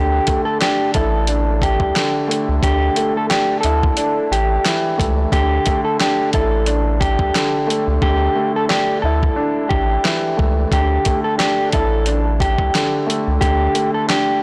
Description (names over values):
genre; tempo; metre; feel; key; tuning
hip hop, boom-bap hip-hop; 89 BPM; 4/4; swing 58% on 16ths; unclear; A4 = 439 Hz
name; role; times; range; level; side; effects
mellow electric guitar; melody; 0.0-14.4 s; G4 to A4; -22 LUFS; equal; high-pass filter, low-pass filter, tape echo
dark upright piano; accompaniment; 0.0-14.4 s; D3 to E4; -24 LUFS; equal; high-pass filter, low-pass filter
round analog bass; bass; 0.0-13.7 s; A1 to D2; -21 LUFS; equal; transformer saturation
dusty soul sampler-style drum kit; drums; 0.3-14.3 s; handclaps, hi-hat, kick drum, snare drum; -23 LUFS; equal; none
room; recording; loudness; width
light reverb; blown-out, overdriven recording, overdrive; -17 LUFS; mono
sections
0.0-14.4 A section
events
hi-hats muted 8.0-10.7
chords
0.0 Dsus2